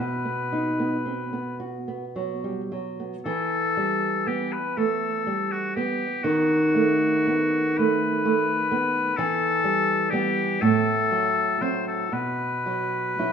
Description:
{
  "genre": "romantic duo for oboe and classical guitar",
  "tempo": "41 BPM (dotted quarters)",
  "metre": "6/8",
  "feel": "uneven beats, rubato",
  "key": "E minor",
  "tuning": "A4 = 441 Hz",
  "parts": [
    { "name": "clear oboe", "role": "melody", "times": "0.0-13.3 s", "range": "F#4 to C5", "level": "-25 LUFS", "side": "left 4 dB", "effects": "none" },
    { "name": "nylon-string guitar", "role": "accompaniment", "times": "0.0-13.3 s", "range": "A2 to F#4", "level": "-24 LUFS", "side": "right 2 dB", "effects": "none" }
  ],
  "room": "wet recital hall reverb, RT60 1.6 s",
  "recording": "minimal, uncompressed stereo recording",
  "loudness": "-22 LUFS",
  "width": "side -7 dB against mid",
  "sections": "0.0-3.3 A section; 3.3-13.3 B section",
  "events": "none",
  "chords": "0.0 B; 3.3 Em; 6.2 B7/D#; 9.2 Em; 10.6 F#dim/A; 12.1 B5"
}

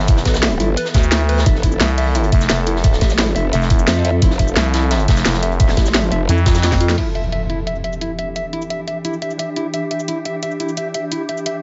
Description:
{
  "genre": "dark technical drum and bass",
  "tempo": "174 BPM",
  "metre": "4/4",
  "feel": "straight",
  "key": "E phrygian",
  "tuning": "A4 = 440 Hz",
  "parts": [
    { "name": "swarming drone", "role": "sustained chords", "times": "0.0-11.6 s", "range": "E3 to A4", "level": "-28 LUFS", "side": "equal", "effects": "built-in reverb, sidechain pumping" },
    { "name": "growling FM bass", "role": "bass", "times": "0.0-7.0 s", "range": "F1 to F2", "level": "-19 LUFS", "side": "equal", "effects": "none" },
    { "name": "mellow electric guitar", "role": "arpeggios", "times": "0.1-11.6 s", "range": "E4 to E5", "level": "-26 LUFS", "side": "equal", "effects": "sidechain pumping, delay" },
    { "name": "crunchy breakbeat drum kit", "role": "drums", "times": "0.1-6.9 s", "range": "hi-hat, snare drum", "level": "-29 LUFS", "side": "equal", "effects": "high-pass filter on hats, high-pass filter on snare, high-pass filter on room" },
    { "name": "drum and bass drum kit", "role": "drums", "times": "0.1-11.5 s", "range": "cabasa, crash cymbal, hi-hat, snare drum", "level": "-23 LUFS", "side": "equal", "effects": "overdrive, low-pass filter on hats, low-pass filter on perc, low-pass filter on snare, low-pass filter on cymbals" },
    { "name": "electronic kick drum", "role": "drums", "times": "0.1-6.8 s", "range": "none", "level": "-17 LUFS", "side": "equal", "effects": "none" },
    { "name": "growl bass", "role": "bass", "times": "0.3-6.3 s", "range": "F1 to F2", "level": "-21 LUFS", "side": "equal", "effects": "chorus, tube saturation, sidechain pumping" },
    { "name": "impact", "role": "sound effects", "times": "7.0-8.4 s", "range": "none", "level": "-27 LUFS", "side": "equal", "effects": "none" }
  ],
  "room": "digital ambience",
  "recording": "nothing above 7.7 kHz",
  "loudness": "-17 LUFS",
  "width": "mono",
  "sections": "0.0-7.0 A section; 7.0-11.6 B section",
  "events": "drop 0.0-7.0; drum fill 6.6-7.0; band accent 6.9; impact 7.0-8.4",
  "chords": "0.0 G6; 1.5 F; 7.0 Em7"
}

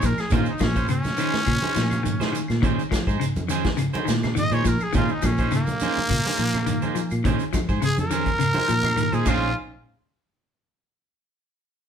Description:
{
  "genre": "afrobeat",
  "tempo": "104 BPM",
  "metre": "4/4",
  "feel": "straight",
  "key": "Bb minor",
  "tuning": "A4 = 438 Hz",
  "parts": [
    { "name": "growling trumpet", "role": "melody", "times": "0.0-9.6 s", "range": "Bb3 to Eb5", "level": "-25 LUFS", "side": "equal", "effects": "none" },
    { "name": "clean electric guitar", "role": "arpeggios", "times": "0.0-9.4 s", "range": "Bb2 to F3", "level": "-27 LUFS", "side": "left 3 dB", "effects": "none" },
    { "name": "electric guitar at the edge of break-up", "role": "stabs", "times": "0.0-9.5 s", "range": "Db4 to C5", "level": "-30 LUFS", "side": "right 4 dB", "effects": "none" },
    { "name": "fingered electric bass", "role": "bass", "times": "0.0-9.5 s", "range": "Bb1 to Bb2", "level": "-26 LUFS", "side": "equal", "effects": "none" },
    { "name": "vintage drum kit", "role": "drums", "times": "0.0-9.4 s", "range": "crash cymbal, hi-hat, kick drum, snare drum", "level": "-27 LUFS", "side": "equal", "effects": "none" },
    { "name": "shekere", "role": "percussion", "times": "0.0-9.4 s", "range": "none", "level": "-34 LUFS", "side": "right 5 dB", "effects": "none" },
    { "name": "claves", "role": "percussion", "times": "0.2-9.4 s", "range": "none", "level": "-39 LUFS", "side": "left 3 dB", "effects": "none" },
    { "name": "congas", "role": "percussion", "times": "0.3-9.4 s", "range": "none", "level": "-32 LUFS", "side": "right 2 dB", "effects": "none" }
  ],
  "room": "moderate studio reverb, RT60 0.7 s",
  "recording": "band playing live in one room",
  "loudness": "-20 LUFS",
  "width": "side -8 dB against mid",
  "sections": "0.0-9.6 A section; 9.6-11.9 B section",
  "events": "trumpet solo 0.0-9.6",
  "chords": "0.0 Bbm11; 9.6 N.C."
}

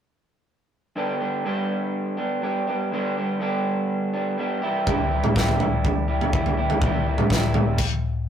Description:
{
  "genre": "quiet-loud alternative rock",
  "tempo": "123 BPM",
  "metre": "4/4",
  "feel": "straight",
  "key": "G major",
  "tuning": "A4 = 440 Hz",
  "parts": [
    { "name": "electric guitar through a small old amp", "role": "arpeggios", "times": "1.0-7.8 s", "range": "G2 to G4", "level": "-24 LUFS", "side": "right 1 dB", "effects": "spring reverb" },
    { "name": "big rock drum kit", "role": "drums", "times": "4.9-7.9 s", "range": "crash cymbal, kick drum, snare drum, toms", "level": "-20 LUFS", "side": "equal", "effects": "none" }
  ],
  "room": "light reverb",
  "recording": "rough rehearsal-room recording, warm saturation",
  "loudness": "-21 LUFS",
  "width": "side -9 dB against mid",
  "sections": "1.0-8.3 A section",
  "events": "stop 7.8-8.3",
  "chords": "1.0 G; 4.6 C"
}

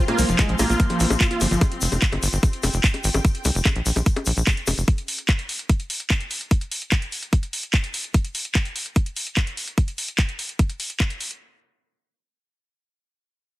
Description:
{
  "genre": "psychedelic trance",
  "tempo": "147 BPM",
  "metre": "4/4",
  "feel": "straight",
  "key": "unclear",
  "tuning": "A4 = 440 Hz",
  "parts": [
    { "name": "overdriven acid bass", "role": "riff", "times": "0.0-1.6 s", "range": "E3 to F4", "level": "-26 LUFS", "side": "right 1 dB", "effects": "distortion, auto-pan, sidechain pumping, digital delay" },
    { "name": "clear symphonic string section", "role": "texture", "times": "0.0-4.9 s", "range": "C4 to C6", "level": "-33 LUFS", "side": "left 2 dB", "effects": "sidechain pumping" },
    { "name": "oud", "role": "melody", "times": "0.1-1.5 s", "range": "Ab3 to Bb3", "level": "-26 LUFS", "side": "right 1 dB", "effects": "phaser, sidechain pumping, digital delay" },
    { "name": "drum and bass drum kit", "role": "drums", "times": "0.1-11.4 s", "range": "bongos, handclaps, hi-hat", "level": "-26 LUFS", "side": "left 1 dB", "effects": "none" },
    { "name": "tight sequencer bass", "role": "bass", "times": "0.2-4.8 s", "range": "F1 to C2", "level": "-22 LUFS", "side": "equal", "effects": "none" },
    { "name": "egg shaker", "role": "percussion", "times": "0.2-4.9 s", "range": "none", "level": "-30 LUFS", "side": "left 3 dB", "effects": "none" },
    { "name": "electronic kick drum", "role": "drums", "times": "0.4-11.1 s", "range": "none", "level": "-19 LUFS", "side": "equal", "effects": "none" }
  ],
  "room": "little or no reverb",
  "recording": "heavily compressed radio sound",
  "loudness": "-20 LUFS",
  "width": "side -17 dB against mid",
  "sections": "0.0-11.4 A section",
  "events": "fade-out on string section 0.0-4.9; filter sweep on acid bass 0.0-1.6",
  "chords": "0.0 F5"
}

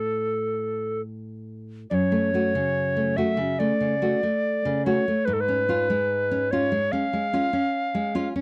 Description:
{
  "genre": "romantic duo for recorder and classical guitar",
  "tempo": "63-74 BPM",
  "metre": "4/4",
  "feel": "rubato",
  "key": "F# minor",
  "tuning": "A4 = 440 Hz",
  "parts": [
    { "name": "tenor recorder", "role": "melody", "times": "0.0-8.3 s", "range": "A4 to E#5", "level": "-27 LUFS", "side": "equal", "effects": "none" },
    { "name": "nylon-string guitar", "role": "accompaniment", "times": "0.0-8.4 s", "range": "F#2 to F#4", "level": "-28 LUFS", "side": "equal", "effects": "none" }
  ],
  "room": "light reverb",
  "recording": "dry, close 1970s-style studio recording",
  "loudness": "-24 LUFS",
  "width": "mono",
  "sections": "0.0-1.9 A section; 1.9-8.4 B section",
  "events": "none",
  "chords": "0.0 A; 1.9 F#m; 5.3 C#7/G#"
}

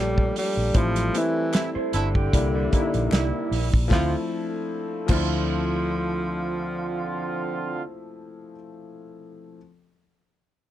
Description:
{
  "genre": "lush 1970s-style soul",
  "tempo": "76 BPM",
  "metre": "4/4",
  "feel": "swing 54% on 16ths",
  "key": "D minor",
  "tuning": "A4 = 440 Hz",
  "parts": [
    { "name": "breathy tenor saxophone", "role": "melody", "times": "0.0-7.8 s", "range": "D3 to G3", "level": "-27 LUFS", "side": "right 1 dB", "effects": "none" },
    { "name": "clear concert grand piano", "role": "accompaniment", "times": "0.0-9.6 s", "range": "F3 to E4", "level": "-30 LUFS", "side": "left 4 dB", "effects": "none" },
    { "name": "mellow French horn section", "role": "sustained chords", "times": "0.0-7.8 s", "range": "D3 to Bb4", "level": "-36 LUFS", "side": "equal", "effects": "none" },
    { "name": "vintage muted fingered electric bass", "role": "bass", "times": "0.0-8.5 s", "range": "G1 to D2", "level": "-27 LUFS", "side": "equal", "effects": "none" },
    { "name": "damped 70s drum kit", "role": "drums", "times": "0.2-5.3 s", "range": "crash cymbal, hi-hat, kick drum, snare drum", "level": "-24 LUFS", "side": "equal", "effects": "none" },
    { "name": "warm horn section", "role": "stabs", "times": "1.5-7.8 s", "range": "D3 to F4", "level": "-31 LUFS", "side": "right 4 dB", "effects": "none" },
    { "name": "group handclap", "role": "percussion", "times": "1.5-5.3 s", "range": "none", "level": "-38 LUFS", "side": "left 4 dB", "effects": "none" },
    { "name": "electric guitar through a small old amp", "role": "riff", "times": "1.8-3.7 s", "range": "G3 to C5", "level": "-31 LUFS", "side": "right 4 dB", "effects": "lush chorus" }
  ],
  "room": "little or no reverb",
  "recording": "dark, warm production",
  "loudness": "-22 LUFS",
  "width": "side -12 dB against mid",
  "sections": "0.0-3.9 A section; 3.9-7.1 B section",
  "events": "band accent 0.7-3.9",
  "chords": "0.0 Gm9; 0.7 Am7; 2.3 C9; 3.9 Dm7"
}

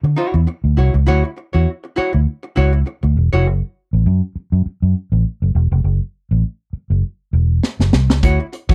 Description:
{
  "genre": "funk",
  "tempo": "101 BPM",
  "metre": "4/4",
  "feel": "swing 56% on 16ths",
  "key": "unclear",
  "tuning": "A4 = 440 Hz",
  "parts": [
    { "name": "archtop guitar, miked and amplified", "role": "accompaniment", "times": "0.0-3.5, 8.2-8.7 s", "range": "E4 to C#5", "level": "-23 LUFS", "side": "equal", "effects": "none" },
    { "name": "vintage muted fingered electric bass", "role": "bass", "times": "0.0-8.7 s", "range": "E1 to D3", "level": "-16 LUFS", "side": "equal", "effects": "none" },
    { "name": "tight funk drum kit", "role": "drums", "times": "7.6-8.7 s", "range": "hi-hat, kick drum, snare drum", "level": "-18 LUFS", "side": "equal", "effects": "none" }
  ],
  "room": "little or no reverb",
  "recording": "dry, close 1970s-style studio recording",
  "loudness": "-17 LUFS",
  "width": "mono",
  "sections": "0.0-8.7 A section",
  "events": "drum fill 7.6-8.2",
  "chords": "0.0 Dmaj9; 3.5 F#m7; 8.2 Dmaj9"
}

